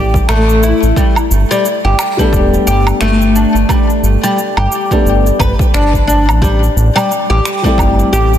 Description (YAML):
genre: organic downtempo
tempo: 88 BPM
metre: 4/4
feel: swing 58% on 16ths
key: unclear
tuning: A4 = 440 Hz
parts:
  - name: oud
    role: arpeggios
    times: 0.0-8.3 s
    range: G3 to B4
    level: -13 LUFS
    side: left 2 dB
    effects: ping-pong delay
  - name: round analog bass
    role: bass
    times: 0.0-8.4 s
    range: E1 to A1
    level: -13 LUFS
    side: equal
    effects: sidechain pumping
  - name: electronic kick drum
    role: drums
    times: 0.1-7.9 s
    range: none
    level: -14 LUFS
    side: equal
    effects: none
  - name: electronic cabasa, finger snaps and woodblock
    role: drums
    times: 0.2-8.4 s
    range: none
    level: -21 LUFS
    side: right 2 dB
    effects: soft clipping on snare
  - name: felt-muted upright piano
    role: accompaniment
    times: 2.2-8.4 s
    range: G3 to A4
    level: -18 LUFS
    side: left 1 dB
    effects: sidechain pumping, ping-pong delay
room: moderate lush hall reverb, RT60 1.8 s, small room ambience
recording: dense, heavily limited modern master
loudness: -9 LUFS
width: side -10 dB against mid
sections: 0.0-8.4 A section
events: none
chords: 0.0 A7(no3); 1.0 Gadd9; 6.4 Am7